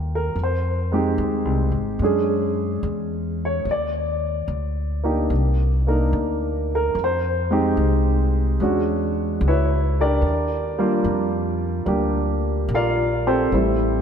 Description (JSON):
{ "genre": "jazz ballad", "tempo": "73 BPM", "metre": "4/4", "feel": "swing 66% on 8ths", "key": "unclear", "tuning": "A4 = 440 Hz", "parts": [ { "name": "warm concert grand piano", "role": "accompaniment", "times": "0.0-14.0 s", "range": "G3 to F5", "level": "-21 LUFS", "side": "equal", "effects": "none" }, { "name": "upright bass", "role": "bass", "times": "0.0-14.0 s", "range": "Ab1 to F#2", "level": "-23 LUFS", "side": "equal", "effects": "none" } ], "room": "wet lush hall reverb, RT60 2.6 s", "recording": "dreamy mix soaked in reverb", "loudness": "-19 LUFS", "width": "side -7 dB against mid", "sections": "0.0-14.0 A section", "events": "none", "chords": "0.3 Fm9; 2.0 E13; 3.7 Ebmaj7; 5.3 Cm9; 6.9 Fm9; 8.6 E13; 10.2 Ebmaj9", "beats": "| 0.35 1.17 2.00 2.83 | 3.65 4.48 5.30 6.13 | 6.95 7.77 8.59 9.41 | 10.23 11.06 11.88 12.70 | 13.53" }